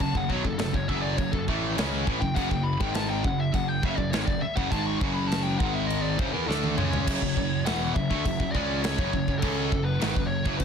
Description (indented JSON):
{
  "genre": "heavy metal",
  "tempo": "102 BPM",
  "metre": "4/4",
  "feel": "straight",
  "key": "F# minor",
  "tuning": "A4 = 440 Hz",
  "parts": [
    { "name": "high-gain lead guitar", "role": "melody", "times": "0.0-10.6 s", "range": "A4 to C#6", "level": "-32 LUFS", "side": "left 3 dB", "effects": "distortion, ping-pong delay" },
    { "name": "distorted electric guitar", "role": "riff", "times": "0.0-10.6 s", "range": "E2 to D4", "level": "-32 LUFS", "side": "left 12 dB", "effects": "overdrive" },
    { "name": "distorted electric guitar", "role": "riff", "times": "0.0-10.6 s", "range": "E2 to D4", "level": "-34 LUFS", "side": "equal", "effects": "overdrive" },
    { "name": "high-gain distorted guitar", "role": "riff", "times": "0.0-10.6 s", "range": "E2 to D4", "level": "-31 LUFS", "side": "right 12 dB", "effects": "distortion" },
    { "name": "fuzz picked electric bass", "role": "bass", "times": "0.0-10.6 s", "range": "E1 to E2", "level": "-32 LUFS", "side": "equal", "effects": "overdrive" },
    { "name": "big rock drum kit", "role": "drums", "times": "0.0-10.6 s", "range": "china cymbal, crash cymbal, kick drum, snare drum, toms", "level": "-30 LUFS", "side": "equal", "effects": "none" }
  ],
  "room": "little or no reverb",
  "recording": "dense, heavily limited modern master",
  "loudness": "-24 LUFS",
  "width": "side -7 dB against mid",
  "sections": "0.0-7.1 A section; 7.1-10.6 B section",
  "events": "lead electric guitar solo 0.0-7.1; drum fill 6.5-7.1",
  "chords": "0.0 F#m; 5.6 G#5; 6.2 F#m; 7.1 F#5"
}